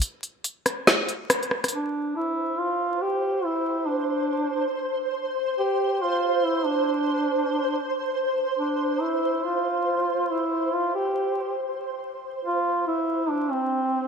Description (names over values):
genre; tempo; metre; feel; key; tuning
deep dubstep; 140 BPM; 4/4; swing 59% on 16ths, half-time; unclear; A4 = 440 Hz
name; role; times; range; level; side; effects
deep house drum kit; drums; 0.0-1.8 s; hi-hat, rim click, snare drum; -21 LUFS; equal; gated reverb
mellow duduk; melody; 1.7-14.1 s; C4 to G4; -25 LUFS; right 1 dB; dub echo
flickering grainy texture; texture; 2.4-14.1 s; C5; -27 LUFS; right 1 dB; built-in reverb, analog chorus
room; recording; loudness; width
moderate plate reverb, RT60 2.0 s; bright 1980s-style digital production, vinyl crackle; -23 LUFS; side -6 dB against mid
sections
0.0-1.7 A section; 1.7-14.1 B section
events
band accent 1.3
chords
none